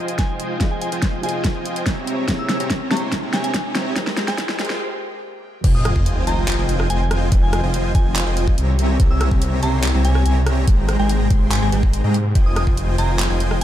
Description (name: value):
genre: future bass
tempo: 143 BPM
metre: 4/4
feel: half-time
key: F minor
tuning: A4 = 438 Hz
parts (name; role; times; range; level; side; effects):
- dark baby grand piano; accompaniment; 0.0-5.7 s; C3 to Db6; -31 LUFS; left 1 dB; sidechain pumping, tape echo
- airy breathy pad; sustained chords; 0.0-13.6 s; C3 to G4; -33 LUFS; equal; none
- dense compressed supersaw; riff; 0.0-13.6 s; Ab3 to C6; -24 LUFS; equal; sidechain pumping, low-pass filter
- riser and sub drop; sound effects; 0.5-7.3 s; none; -30 LUFS; equal; none
- pop drum kit; drums; 0.1-13.6 s; crash cymbal, handclaps, hi-hat, rim click, snare drum; -24 LUFS; equal; overdrive
- soft synth bell; melody; 0.2-13.6 s; Ab5 to E6; -30 LUFS; equal; chorus, sidechain pumping, ping-pong delay
- electronic kick drum; drums; 0.2-12.8 s; none; -18 LUFS; equal; overdrive
- wide detuned saw bass; bass; 5.6-13.6 s; F1 to Ab2; -19 LUFS; equal; chorus, sidechain pumping
room: little or no reverb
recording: dark, warm production, high-pass filter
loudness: -16 LUFS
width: side -12 dB against mid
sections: 0.0-5.6 A section; 5.6-13.6 B section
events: build-up 0.0-5.6; drum fill 0.0-4.8; filter sweep 0.0-5.6; break 4.8-5.6; drop 5.6-13.6; impact 5.6-7.3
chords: 0.0 Fm7; 2.1 C7b9b13; 4.0 Abmaj9; 5.6 Fm7; 8.8 C7b9b13; 10.7 Abmaj9; 12.4 Fm7